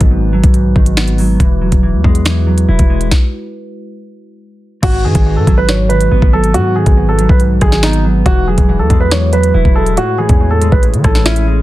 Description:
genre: hip hop, drill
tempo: 140 BPM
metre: 4/4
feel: half-time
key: G# phrygian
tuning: A4 = 440 Hz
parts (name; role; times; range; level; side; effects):
- mellow electric guitar; accompaniment; 0.0-11.6 s; G#2 to E4; -16 LUFS; equal; none
- glass harmonica; sustained chords; 0.0-11.6 s; G#3 to C#5; -24 LUFS; right 2 dB; none
- hard-hitting 808-style bass; bass; 0.0-11.6 s; D#1 to E3; -14 LUFS; equal; none
- drill drum kit; drums; 0.0-11.5 s; crash cymbal, finger snaps, hi-hat, kick drum, rim click, snare drum; -12 LUFS; equal; none
- dark concert grand piano; melody; 4.8-11.5 s; D#4 to C#5; -16 LUFS; right 2 dB; digital delay
room: digital ambience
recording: dense, heavily limited modern master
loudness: -9 LUFS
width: side -16 dB against mid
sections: 0.0-4.8 A section; 4.8-11.6 B section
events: break 0.0-4.8; stop 3.1-4.8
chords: 0.0 G#m7; 1.4 Eadd9; 3.1 N.C.; 4.8 G#m7; 8.3 Eadd9; 10.0 Amaj7

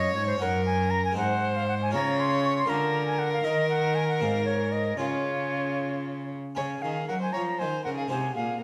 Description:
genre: classical, baroque-style sonata movement with continuo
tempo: 78 BPM (dotted quarters)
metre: 6/8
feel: straight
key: Db major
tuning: A4 = 440 Hz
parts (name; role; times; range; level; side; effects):
- concert flute; melody; 0.0-8.6 s; C5 to Db6; -32 LUFS; equal; none
- warm violin; second line; 0.0-8.6 s; F4 to Db5; -32 LUFS; equal; none
- harpsichord; accompaniment; 0.0-8.6 s; Gb2 to Bb4; -40 LUFS; equal; none
- warm cello; bass; 0.0-8.6 s; Gb2 to Gb3; -32 LUFS; equal; none
room: wet recital hall reverb, RT60 1.5 s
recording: none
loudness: -27 LUFS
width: mono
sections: 0.0-6.6 A section; 6.6-8.6 B section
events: none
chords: 0.4 Ebm7/Gb; 1.2 Ab7; 1.9 Db; 2.7 Bb7/D; 3.5 Eb5; 4.2 Ab; 5.0 Db; 8.1 Ab7

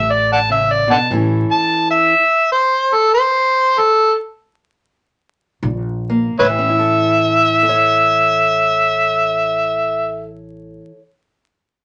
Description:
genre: acoustic country blues, solo or duo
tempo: 77-100 BPM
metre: 4/4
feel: swing 62% on 8ths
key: A major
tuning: A4 = 438 Hz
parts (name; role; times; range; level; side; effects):
- overdriven harmonica; melody; 0.0-10.3 s; A4 to A5; -15 LUFS; equal; none
- fingerpicked old ladder-braced acoustic guitar; accompaniment; 0.0-11.0 s; A2 to C#5; -24 LUFS; equal; none
- upright bass; bass; 0.0-1.4, 5.6-10.8 s; A1 to Bb1; -26 LUFS; equal; none
room: moderate studio reverb, RT60 0.5 s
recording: vinyl crackle, nothing above 10.3 kHz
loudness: -15 LUFS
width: mono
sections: 0.0-6.4 A section; 6.4-9.5 B section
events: harmonica solo 0.0-6.4; slowing down 1.1-6.4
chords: 0.0 D5; 1.1 A; 5.6 N.C.; 6.4 A

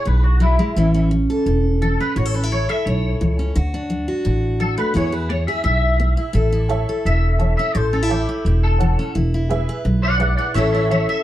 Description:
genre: country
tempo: 172 BPM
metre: 4/4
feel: straight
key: A major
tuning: A4 = 439 Hz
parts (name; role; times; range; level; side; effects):
- twangy electric guitar; melody; 0.0-11.2 s; E4 to F#5; -23 LUFS; left 1 dB; ensemble chorus
- picked steel-string acoustic guitar; accompaniment; 0.0-11.2 s; A2 to B4; -22 LUFS; left 1 dB; none
- upright bass; bass; 0.1-11.0 s; E1 to E2; -19 LUFS; equal; none
- honky-tonk upright piano; accompaniment; 6.7-11.2 s; G#4 to F#5; -27 LUFS; right 5 dB; none
room: light reverb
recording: dark, warm production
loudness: -16 LUFS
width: side -13 dB against mid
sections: 0.0-11.2 A section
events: clean electric guitar solo 0.0-11.2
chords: 0.0 E; 0.8 A; 3.6 D; 5.0 E; 6.4 A; 9.2 E; 10.6 A

